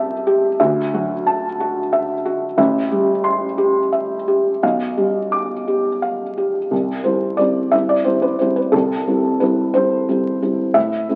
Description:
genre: neoclassical minimalist piano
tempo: 60 BPM (dotted quarters)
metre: 6/8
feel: rubato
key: unclear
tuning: A4 = 440 Hz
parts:
  - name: felt-muted upright piano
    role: solo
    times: 0.0-11.2 s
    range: A1 to D6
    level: -18 LUFS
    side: equal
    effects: none
room: moderate large studio reverb, RT60 1.2 s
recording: very old 78 rpm record, vinyl crackle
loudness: -18 LUFS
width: mono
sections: 0.0-6.7 A section; 6.7-11.2 B section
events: none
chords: 0.0 C6; 0.6 Dadd9; 2.6 Am7; 4.6 G7/B; 6.7 C

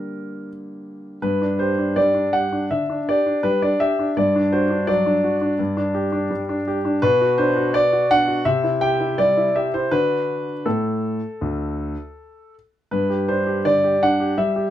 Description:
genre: classical-period piano sonatina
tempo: 82 BPM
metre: 4/4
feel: rubato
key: G major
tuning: A4 = 440 Hz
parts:
  - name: warm concert grand piano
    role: solo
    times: 0.0-14.7 s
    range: D2 to G5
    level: -18 LUFS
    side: equal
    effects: none
room: moderate studio ambience, RT60 0.5 s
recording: minimal, uncompressed stereo recording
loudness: -18 LUFS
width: side -12 dB against mid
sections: 0.0-1.2 A section; 1.2-14.7 A section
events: none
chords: 0.0 Gm; 1.2 G5; 4.1 D/G; 5.6 G5; 7.0 Bm; 8.4 C; 9.9 D; 12.9 G5

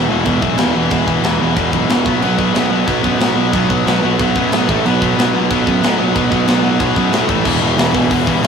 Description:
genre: punk rock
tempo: 184 BPM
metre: 4/4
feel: straight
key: unclear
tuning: A4 = 438 Hz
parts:
  - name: overdriven semi-hollow guitar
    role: riff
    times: 0.0-8.5 s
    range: E2 to B3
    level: -17 LUFS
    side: right 6 dB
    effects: none
  - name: tight distorted guitar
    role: riff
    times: 0.0-8.5 s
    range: E2 to B3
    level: -17 LUFS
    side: left 8 dB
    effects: distortion
  - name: fuzz picked electric bass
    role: bass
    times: 0.0-8.5 s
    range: E1 to A2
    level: -22 LUFS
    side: left 1 dB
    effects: overdrive
  - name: tight metal drum kit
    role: drums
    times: 0.3-8.5 s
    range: crash cymbal, hi-hat, kick drum, snare drum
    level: -18 LUFS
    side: equal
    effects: none
room: light reverb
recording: rough rehearsal-room recording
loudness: -12 LUFS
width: side -6 dB against mid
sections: 0.0-7.5 A section; 7.5-8.5 B section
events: none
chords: 0.0 E5; 2.1 B5; 4.7 A5; 4.8 B5; 7.3 A5; 7.5 Em

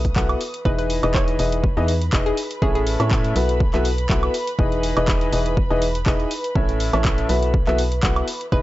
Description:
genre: piano house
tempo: 122 BPM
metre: 4/4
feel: swing 54% on 16ths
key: E major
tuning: A4 = 441 Hz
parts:
  - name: warm studio string section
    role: sustained chords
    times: 0.0-8.6 s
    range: B4 to D#6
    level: -31 LUFS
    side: right 1 dB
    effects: sidechain pumping
  - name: organ-like FM bass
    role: bass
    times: 0.0-8.6 s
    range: E1 to A2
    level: -23 LUFS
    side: equal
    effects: sidechain pumping
  - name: electronic kick drum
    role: drums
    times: 0.0-8.6 s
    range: none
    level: -21 LUFS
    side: equal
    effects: overdrive
  - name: house drum kit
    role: drums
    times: 0.0-8.5 s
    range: handclaps, hi-hat, woodblock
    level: -28 LUFS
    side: right 1 dB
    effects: none
  - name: clear upright piano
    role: riff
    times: 0.2-8.6 s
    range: A2 to F#5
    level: -23 LUFS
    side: left 1 dB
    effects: sidechain pumping
  - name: hollow square pluck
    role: melody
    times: 0.7-2.8, 8.5-8.6 s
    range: G#4 to C#5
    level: -28 LUFS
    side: equal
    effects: chorus, analog delay
room: digital ambience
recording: dry, gritty hardware recording, nothing above 7.7 kHz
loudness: -18 LUFS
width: side -16 dB against mid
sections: 0.0-8.6 A section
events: none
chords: 0.0 B7sus4; 0.7 Emaj7; 2.4 A; 3.4 B7sus4; 4.6 Emaj7; 6.3 A; 7.3 B7sus4

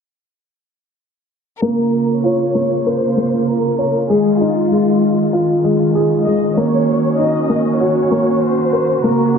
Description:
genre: electronica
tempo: 97 BPM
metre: 4/4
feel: straight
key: Bb minor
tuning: A4 = 440 Hz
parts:
  - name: warm symphonic violin section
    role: melody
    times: 1.6-9.4 s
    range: F4 to Eb5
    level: -20 LUFS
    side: equal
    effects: none
  - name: dark chamber string section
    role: sustained chords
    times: 1.6-9.4 s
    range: Db3 to Gb4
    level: -19 LUFS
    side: right 2 dB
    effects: stereo widening
  - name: felt-muted upright piano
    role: riff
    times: 1.6-9.4 s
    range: Ab3 to Db5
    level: -15 LUFS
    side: left 1 dB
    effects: none
room: moderate scoring stage reverb, RT60 1.9 s, small room ambience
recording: low-pass filter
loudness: -13 LUFS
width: side -6 dB against mid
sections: 1.6-9.4 A section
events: filter sweep 1.6-9.4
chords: 1.6 Bbm; 4.1 Fm7; 6.6 Ebm7

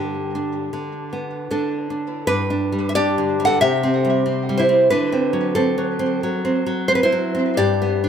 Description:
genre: romantic piece for solo classical guitar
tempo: 75-93 BPM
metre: 4/4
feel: rubato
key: G major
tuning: A4 = 439 Hz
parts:
  - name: nylon-string guitar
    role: solo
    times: 0.0-8.1 s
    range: G2 to F#5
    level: -18 LUFS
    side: equal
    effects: tape echo
room: light reverb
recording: close, detailed microphones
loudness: -17 LUFS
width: side -8 dB against mid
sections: 0.0-2.2 A section; 2.2-8.1 A section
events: none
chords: 0.0 G; 3.6 C; 4.9 D7; 7.6 G

